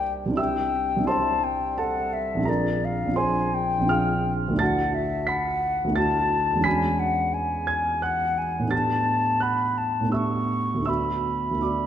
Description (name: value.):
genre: classical, impressionist duo for flute and grand piano.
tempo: 86 BPM.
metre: 3/4.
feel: rubato.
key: D lydian.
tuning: A4 = 440 Hz.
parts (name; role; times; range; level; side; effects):
mellow concert flute; melody; 0.0-11.9 s; D5 to C#6; -25 LUFS; left 3 dB; none.
dark concert grand piano; accompaniment; 0.0-11.9 s; Bb1 to B6; -24 LUFS; right 2 dB; none.
room: wet recital hall reverb, RT60 1.6 s.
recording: none.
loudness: -22 LUFS.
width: side -10 dB against mid.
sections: 0.0-11.9 A section.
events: none.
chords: 0.4 Cadd9; 2.5 Bb9; 4.6 Dadd9; 6.7 E13; 8.7 A9sus4; 10.9 D6.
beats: | 0.38 1.08 1.79 | 2.48 3.18 3.91 | 4.60 5.29 5.97 | 6.65 7.34 8.02 | 8.71 9.41 10.13 | 10.88 11.63.